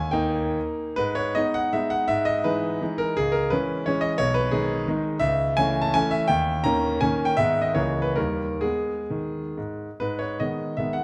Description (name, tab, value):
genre	classical, romantic triple-time dance for piano with dotted rhythms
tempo	121-190 BPM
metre	3/4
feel	rubato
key	G# minor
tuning	A4 = 440 Hz
part	clear concert grand piano	solo	0.0-11.0 s	B1 to A#5	-24 LUFS	equal	none
room	moderate recital hall reverb, RT60 1.6 s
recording	none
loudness	-25 LUFS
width	mono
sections	1.0-10.0 A section; 10.0-11.0 B section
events	none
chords	0.0 D#; 1.0 G#m; 2.1 Emaj7/G#; 3.2 C#m; 4.2 G#m/B; 5.2 A/C#; 6.3 D#7; 7.4 G#m; 7.8 A#dim/C#; 8.2 D#; 8.6 G#m